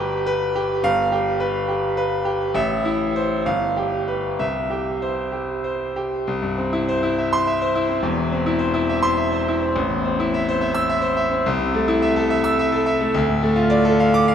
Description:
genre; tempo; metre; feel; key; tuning
classical, virtuoso piano study; 62-71 BPM (dotted quarters); 6/8; rubato; C major; A4 = 439 Hz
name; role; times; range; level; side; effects
bright concert grand piano; solo; 0.0-14.3 s; E1 to E6; -18 LUFS; equal; none
room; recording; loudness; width
wet cathedral reverb, RT60 5.3 s; in a vast, echoing space; -18 LUFS; side -8 dB against mid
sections
0.0-6.3 A section; 6.3-14.3 B section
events
none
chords
0.0 G; 0.8 G7; 2.6 Am; 3.5 G7; 4.4 C; 8.0 C/E; 9.8 Am; 11.5 Am/C; 13.2 Dm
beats
| 0.83 1.69 | 2.56 3.45 | 4.39 5.33 | 6.28 7.17 | 8.03 8.89 | 9.76 10.61 | 11.46 12.31 | 13.16 14.02

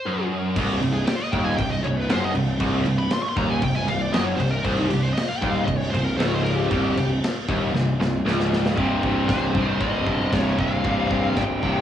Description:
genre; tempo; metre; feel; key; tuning
heavy metal; 117 BPM; 4/4; straight; C phrygian; A4 = 440 Hz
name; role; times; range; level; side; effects
high-gain lead guitar; melody; 0.0-11.8 s; Eb4 to Db6; -28 LUFS; left 1 dB; distortion
heavy high-gain guitar; riff; 0.1-11.8 s; C2 to C3; -24 LUFS; equal; distortion, cassette tape
distorted electric guitar; riff; 0.6-11.8 s; C2 to C3; -27 LUFS; equal; overdrive, cassette tape
fuzz picked electric bass; bass; 0.6-11.8 s; C1 to G1; -26 LUFS; equal; overdrive
big rock drum kit; drums; 0.6-11.7 s; china cymbal, crash cymbal, kick drum, snare drum; -27 LUFS; equal; cassette tape
room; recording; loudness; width
light reverb; home recording on cassette, small room ambience; -20 LUFS; side -10 dB against mid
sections
0.6-8.8 A section; 8.8-11.8 B section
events
break 0.0-0.6; lead electric guitar solo 0.6-8.8; drum fill 7.7-8.8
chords
0.0 N.C.; 0.6 Cm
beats
0.04 | 0.55 1.06 1.58 2.09 | 2.60 3.11 3.62 4.13 | 4.65 5.16 5.67 6.19 | 6.70 7.22 7.74 8.25 | 8.77 9.29 9.80 10.32 | 10.84 11.36

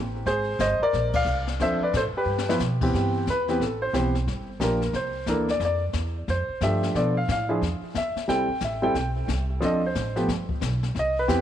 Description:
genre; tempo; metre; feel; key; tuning
jazz piano trio; 180 BPM; 4/4; swing 62% on 8ths; C major; A4 = 441 Hz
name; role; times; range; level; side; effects
upright bass; bass; 0.0-11.4 s; G1 to B2; -28 LUFS; right 1 dB; none
warm grand piano; melody; 0.3-11.4 s; E3 to G5; -24 LUFS; equal; tape echo
jazz brush drum kit; drums; 0.3-11.4 s; brushed snare drum, crash cymbal, hi-hat, kick drum, ride cymbal, snare drum; -33 LUFS; left 5 dB; none
room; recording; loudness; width
light reverb, studio ambience; 1960s-style stereo; -23 LUFS; side -10 dB against mid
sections
0.0-2.9 A section; 2.9-11.4 B section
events
band accent 1.1; drum fill 2.3-2.6; grand piano solo 2.9-11.4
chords
0.3 Fmadd9; 1.6 Dm7; 2.3 G6; 2.9 Cmaj7; 4.3 Gm7; 4.9 C13; 5.6 F69; 6.9 Bm7b5; 7.6 N.C.; 8.3 Am7; 9.6 Dm7; 10.3 G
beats
| 0.27 0.60 0.93 1.27 | 1.60 1.94 2.27 2.60 | 2.94 3.27 3.60 3.94 | 4.27 4.61 4.94 5.28 | 5.61 5.94 6.28 6.61 | 6.95 7.28 7.62 7.95 | 8.28 8.62 8.95 9.29 | 9.62 9.95 10.29 10.62 | 10.96 11.29

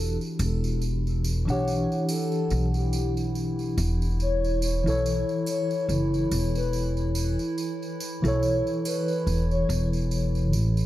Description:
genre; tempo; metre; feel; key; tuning
trip hop; 71 BPM; 4/4; swing 56% on 16ths; unclear; A4 = 440 Hz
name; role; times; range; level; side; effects
pure breathy sine lead; melody; 0.0-9.9 s; G4 to C#5; -32 LUFS; left 1 dB; lush chorus, tape echo
mellow tine electric piano; accompaniment; 0.0-10.9 s; E3 to F#5; -30 LUFS; left 1 dB; harmonic tremolo, low-pass filter, tape echo
warbly tape-like pad; sustained chords; 0.0-10.9 s; E3 to E4; -32 LUFS; right 1 dB; chorus, built-in reverb, vintage 12-bit sampler grit
upright bass; bass; 0.0-10.9 s; E1 to B1; -26 LUFS; equal; none
tambourine and triangle; percussion; 0.2-10.9 s; none; -39 LUFS; right 4 dB; none
room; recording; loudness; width
light reverb, small room ambience; dark, warm production, vinyl crackle; -24 LUFS; side -14 dB against mid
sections
0.0-10.9 A section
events
none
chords
0.0 Em9; 4.2 F#m7/E (rootless)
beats
| 0.82 1.66 2.51 3.35 | 4.20 5.04 5.89 6.73 | 7.58 8.42 9.27 10.11

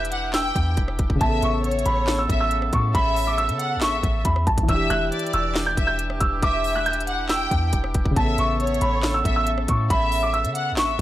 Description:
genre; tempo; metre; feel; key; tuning
hip hop, trap; 138 BPM; 4/4; half-time; unclear; A4 = 440 Hz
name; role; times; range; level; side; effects
dark baby grand piano; melody; 0.0-11.0 s; A5 to G6; -25 LUFS; right 1 dB; low-pass filter
warm studio violin section; second line; 0.0-11.0 s; C#5 to G5; -27 LUFS; left 1 dB; tape echo
dark grand piano; accompaniment; 0.0-11.0 s; C#3 to A4; -30 LUFS; equal; low-pass filter
warm woodwind section; sustained chords; 0.0-11.0 s; C#3 to A4; -34 LUFS; right 1 dB; none
clean 808-style bass; bass; 0.0-11.0 s; E1 to C#3; -25 LUFS; equal; transformer saturation
trap drum kit; drums; 0.0-11.0 s; handclaps, hi-hat, kick drum, rim click, snare drum; -25 LUFS; equal; none
room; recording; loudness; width
small room ambience; dry, gritty hardware recording; -19 LUFS; side -14 dB against mid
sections
0.0-11.0 A section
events
none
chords
0.0 Em7; 1.2 Aadd9; 4.7 Em7; 8.2 Aadd9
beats
0.34 0.77 | 1.21 1.64 2.08 2.51 | 2.95 3.38 3.82 4.25 | 4.69 5.12 5.55 5.99 | 6.42 6.86 7.29 7.73 | 8.16 8.60 9.03 9.47 | 9.90 10.34 10.77

